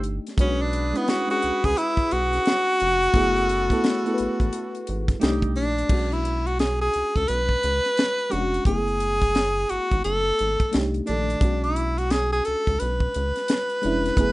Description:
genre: R&B, neo-soul.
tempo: 87 BPM.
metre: 4/4.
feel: swing 63% on 16ths.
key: B dorian.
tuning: A4 = 441 Hz.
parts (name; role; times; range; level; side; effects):
FM electric piano with auto-pan; accompaniment; 0.0-14.3 s; Eb3 to B4; -29 LUFS; equal; none.
warm horn section; stabs; 0.0-5.5 s; G3 to B4; -34 LUFS; right 2 dB; slapback echo.
rubbery square bass; bass; 0.0-14.3 s; E#1 to C#2; -27 LUFS; equal; none.
tight funk drum kit; drums; 0.0-14.3 s; crash cymbal, hi-hat, kick drum, snare drum; -24 LUFS; equal; none.
breathy tenor saxophone; melody; 0.4-14.3 s; B3 to B4; -23 LUFS; equal; none.
room: light reverb.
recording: rough home demo mix, nothing above 10.5 kHz.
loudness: -20 LUFS.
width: side -19 dB against mid.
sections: 0.0-5.9 A section; 5.9-14.3 B section.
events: none.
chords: 0.4 Bm69; 3.1 F#m11; 5.2 Cm69; 5.9 Bm69; 8.7 F#m11; 10.7 Cm69; 11.4 Bm69.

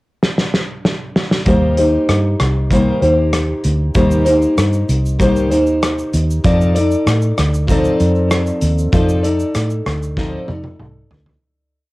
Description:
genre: indie pop, bedroom pop.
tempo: 96 BPM.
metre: 4/4.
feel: straight.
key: Eb lydian.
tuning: A4 = 444 Hz.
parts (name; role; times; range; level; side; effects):
loose indie drum kit; drums; 0.2-11.4 s; hi-hat, kick drum, rim click, shaker, snare drum, toms; -19 LUFS; equal; none.
picked steel-string acoustic guitar; accompaniment; 1.5-11.9 s; Eb3 to D5; -16 LUFS; left 1 dB; wide subtle chorus, vibrato effect, cassette tape.
vintage muted fingered electric bass; bass; 1.5-11.4 s; C2 to A2; -17 LUFS; equal; none.
room: light reverb.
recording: home recording on cassette.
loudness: -13 LUFS.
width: side -20 dB against mid.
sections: 0.0-1.5 pickup bar; 1.5-11.4 verse.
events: drum fill 0.2-1.5, 10.2-11.4; fade-out 8.9-11.4.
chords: 0.0 N.C.; 1.5 Eb6; 6.4 F6.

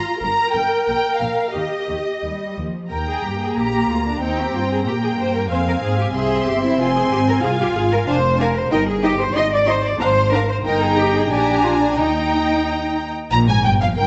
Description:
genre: quick classical-period movement for string orchestra.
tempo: 92 BPM.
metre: 2/4.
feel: straight.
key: Eb major.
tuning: A4 = 440 Hz.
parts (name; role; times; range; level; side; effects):
warm studio violin section; melody; 0.0-14.1 s; Eb5 to C6; -28 LUFS; equal; none.
warm studio violin section; second line; 0.0-14.1 s; Eb5 to Bb5; -27 LUFS; equal; none.
rich studio viola section; accompaniment; 0.0-14.1 s; Bb3 to Bb4; -24 LUFS; equal; none.
warm studio cello section; bass; 0.2-14.1 s; F2 to Eb5; -24 LUFS; equal; none.
warm studio double bass section; bass; 0.2-14.1 s; F1 to Bb2; -26 LUFS; equal; none.
room: moderate scoring stage reverb, RT60 1.6 s.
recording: nothing above 8.0 kHz.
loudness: -19 LUFS.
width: mono.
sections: 0.0-2.9 A section; 2.9-13.3 B section.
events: none.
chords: 0.2 Gm; 0.9 Bb5; 1.6 Eb; 3.6 Bb; 4.2 Eb; 5.5 Fm; 6.2 C; 6.8 Fm; 8.1 Bb/F; 8.7 Eb/G; 9.4 Ab; 10.0 Bb7/Ab; 10.7 Eb/G; 11.3 Bb7; 12.0 Eb; 13.3 Gm7.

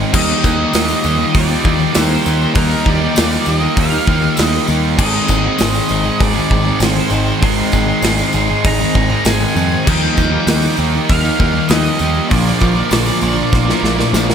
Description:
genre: rock, shoegaze and dream pop.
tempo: 99 BPM.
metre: 4/4.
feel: straight.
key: unclear.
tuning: A4 = 442 Hz.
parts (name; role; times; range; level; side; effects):
clean electric guitar; arpeggios; 0.0-14.3 s; F3 to Ab4; -25 LUFS; right 9 dB; analog chorus, slapback echo.
crunchy overdriven guitar; riff; 0.0-14.3 s; Ab2 to Bb4; -20 LUFS; right 10 dB; reverse reverb.
thick fuzz guitar; riff; 0.0-14.3 s; Ab2 to Eb4; -20 LUFS; left 10 dB; distortion, analog chorus.
tight distorted guitar; riff; 0.0-14.3 s; Ab2 to Eb4; -21 LUFS; right 1 dB; distortion.
growling picked electric bass; bass; 0.0-14.3 s; Ab1 to F2; -18 LUFS; equal; overdrive.
octave-fuzz lead guitar; melody; 0.1-14.1 s; Bb4 to C6; -22 LUFS; equal; distortion, slapback echo.
big rock drum kit; drums; 0.1-14.3 s; crash cymbal, hi-hat, kick drum, snare drum; -18 LUFS; equal; none.
tambourine; percussion; 0.4-14.3 s; none; -30 LUFS; left 7 dB; none.
room: light reverb, small room ambience.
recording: none.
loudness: -12 LUFS.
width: side -8 dB against mid.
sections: 0.0-14.3 A section.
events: drum fill 13.5-14.3.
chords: 0.1 Ebadd9; 5.0 Ab; 9.9 Ebadd9; 12.3 Bb.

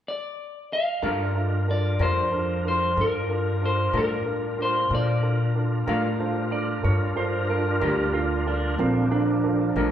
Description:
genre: blues.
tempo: 62 BPM (dotted quarters).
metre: 12/8.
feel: straight.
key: G minor.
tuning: A4 = 442 Hz.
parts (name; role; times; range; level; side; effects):
electric guitar through a small old amp; melody; 0.1-6.2 s; Bb4 to F5; -26 LUFS; left 2 dB; none.
electric guitar through a small old amp; accompaniment; 1.0-9.9 s; G3 to Bb4; -31 LUFS; left 4 dB; tremolo.
warm grand piano; accompaniment; 1.0-9.9 s; D4 to C5; -30 LUFS; right 4 dB; none.
bright tonewheel organ; sustained chords; 1.0-9.9 s; F3 to Bb4; -31 LUFS; right 1 dB; slow rotary speaker, overdrive, chorus vibrato.
upright bass; bass; 1.0-9.9 s; A1 to Bb2; -26 LUFS; left 1 dB; none.
clean lap steel guitar; second line; 5.9-9.9 s; C4 to F5; -27 LUFS; right 3 dB; none.
room: wet large studio reverb, RT60 1.5 s.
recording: band playing live in one room.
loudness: -22 LUFS.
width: side -10 dB against mid.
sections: 0.0-1.0 A section; 1.0-9.9 B section.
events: none.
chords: 0.0 N.C.; 1.0 Gm7.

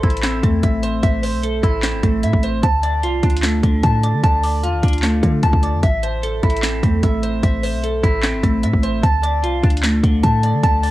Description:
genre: hip hop, trap.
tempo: 150 BPM.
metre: 4/4.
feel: half-time.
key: A minor.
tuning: A4 = 440 Hz.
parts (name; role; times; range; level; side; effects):
clean electric guitar; arpeggios; 0.0-10.9 s; D3 to A5; -19 LUFS; equal; analog chorus, cassette tape, analog delay.
warm 808-style bass; bass; 0.0-10.9 s; G1 to D3; -20 LUFS; equal; none.
trap drum kit; drums; 0.0-10.9 s; handclaps, hi-hat, kick drum, snare drum; -19 LUFS; equal; none.
room: little or no reverb.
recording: home recording on cassette.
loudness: -15 LUFS.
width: side -16 dB against mid.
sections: 0.0-10.9 A section.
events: none.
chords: 0.0 Am; 2.6 Dm; 5.8 Am; 9.0 Dm.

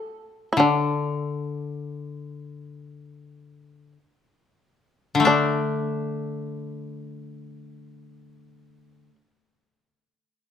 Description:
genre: japanese traditional, Japanese chamber music.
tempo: free time.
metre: none.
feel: none.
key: unclear.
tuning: A4 = 440 Hz.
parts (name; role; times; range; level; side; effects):
shamisen; melody; 0.0-9.2 s; D4 to A4; -25 LUFS; right 2 dB; none.
koto; accompaniment; 0.6-9.2 s; D3 to D4; -24 LUFS; left 4 dB; none.
room: light reverb.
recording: close, detailed microphones.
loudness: -22 LUFS.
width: side -8 dB against mid.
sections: 0.0-5.3 A section; 5.3-10.5 B section.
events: slowing down 0.0-5.3.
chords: none.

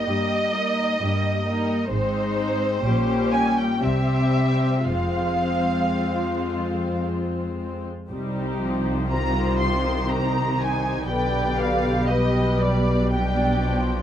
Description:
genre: classical, slow romantic movement for string orchestra.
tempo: 54-67 BPM.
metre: 3/4.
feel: rubato.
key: F minor.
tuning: A4 = 439 Hz.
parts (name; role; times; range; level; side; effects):
muted studio violin section; melody; 0.0-14.0 s; C5 to C6; -26 LUFS; right 2 dB; none.
muted studio violin section; second line; 0.0-14.0 s; Eb4 to D5; -29 LUFS; left 4 dB; none.
muted symphonic viola section; accompaniment; 0.0-14.0 s; D3 to G4; -28 LUFS; left 2 dB; none.
muted studio cello section; bass; 0.1-14.0 s; F2 to C3; -25 LUFS; equal; none.
muted studio double bass section; bass; 1.9-14.0 s; F1 to C2; -26 LUFS; right 1 dB; none.
room: light reverb.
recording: dark, warm production.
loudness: -20 LUFS.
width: side -10 dB against mid.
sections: 0.0-8.1 A section; 8.1-14.0 B section.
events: none.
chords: 0.0 Eb/G; 1.9 Ab; 2.9 Gdim/Bb; 3.8 C; 4.9 Fm; 8.1 Cm; 11.1 G7/B.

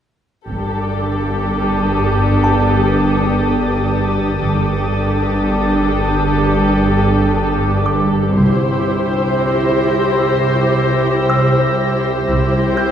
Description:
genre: cinematic.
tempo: 61 BPM.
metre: 4/4.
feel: straight.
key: G dorian.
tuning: A4 = 442 Hz.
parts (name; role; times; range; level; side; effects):
muted studio violin section; melody; 0.5-12.9 s; A4 to C5; -21 LUFS; left 2 dB; none.
muted symphonic viola section; accompaniment; 0.5-12.9 s; D4 to G4; -19 LUFS; right 1 dB; none.
muted studio cello section; bass; 0.5-12.9 s; C2 to G2; -20 LUFS; right 1 dB; none.
muted studio double bass section; bass; 0.5-12.9 s; G1 to C2; -22 LUFS; right 1 dB; none.
organ-like drone; drone; 1.0-12.9 s; G1 to C2; -19 LUFS; equal; ensemble chorus, built-in reverb.
muted studio violin section; texture; 0.5-12.9 s; D6 to Bb6; -28 LUFS; left 3 dB; none.
music box; texture; 2.4-12.9 s; A5 to G6; -24 LUFS; right 1 dB; none.
room: wet recital hall reverb, RT60 1.5 s.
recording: recorded in a church or concert hall, lossy compression artefacts.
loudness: -13 LUFS.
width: side -9 dB against mid.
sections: 0.5-12.9 A section.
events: none.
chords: 0.5 Gsus2; 8.3 C.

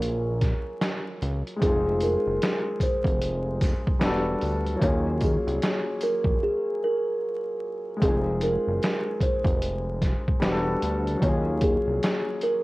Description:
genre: lo-fi hip hop.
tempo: 75 BPM.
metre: 4/4.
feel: swing 61% on 16ths.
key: Eb dorian.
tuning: A4 = 439 Hz.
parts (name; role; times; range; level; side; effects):
kalimba; melody; 0.0-12.6 s; Ab4 to Db5; -28 LUFS; equal; low-pass filter.
warm upright piano; accompaniment; 0.0-12.6 s; Gb3 to A4; -30 LUFS; left 1 dB; cassette tape, low-pass filter.
fat analog bass; bass; 0.0-12.0 s; E1 to Eb2; -28 LUFS; equal; none.
trip hop sampler-style drum kit; drums; 0.0-12.6 s; hi-hat, kick drum, snare drum; -26 LUFS; equal; vintage 12-bit sampler grit.
tambourine; percussion; 2.0-6.2 s; none; -50 LUFS; right 3 dB; none.
room: moderate plate reverb, RT60 2.1 s.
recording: worn, warbling old tape, cassette tape, vinyl crackle, warbly pitch drift.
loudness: -23 LUFS.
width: side -20 dB against mid.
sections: 0.0-8.0 A section; 8.0-12.6 A section.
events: break 6.4-8.0.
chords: 0.0 Ebm11 (rootless); 1.6 Fm7; 4.0 Em11; 4.8 Ebm11; 8.0 Fm7; 10.4 Em11; 11.2 Ebm11.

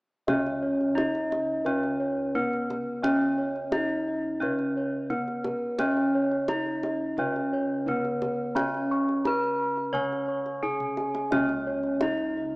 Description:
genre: Javanese gamelan.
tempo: 87 BPM.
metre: 4/4.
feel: straight.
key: unclear.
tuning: A4 = 440 Hz.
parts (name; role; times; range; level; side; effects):
gamelan-type bronze metallophone; melody; 0.3-12.6 s; B3-40c to C#5; -28 LUFS; equal; none.
gamelan-type bronze metallophone; accompaniment; 0.3-12.6 s; C#3 to C#4; -39 LUFS; equal; none.
gamelan-type bossed gongs; arpeggios; 0.3-12.4 s; B4-40c to C#6; -34 LUFS; equal; none.
gamelan-type bronze metallophone; arpeggios; 0.3-12.6 s; B4-40c to C#6; -34 LUFS; right 1 dB; none.
gamelan-type bossed gongs; bass; 0.3-12.6 s; C#2 to D#4+40c; -33 LUFS; equal; none.
kendang; percussion; 0.3-12.3 s; none; -36 LUFS; equal; none.
room: wet lush hall reverb, RT60 2.5 s.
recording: rough home demo mix, small speaker sound.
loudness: -25 LUFS.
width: side -26 dB against mid.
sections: 0.3-12.6 A section.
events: drum fill 10.6-11.3.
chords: none.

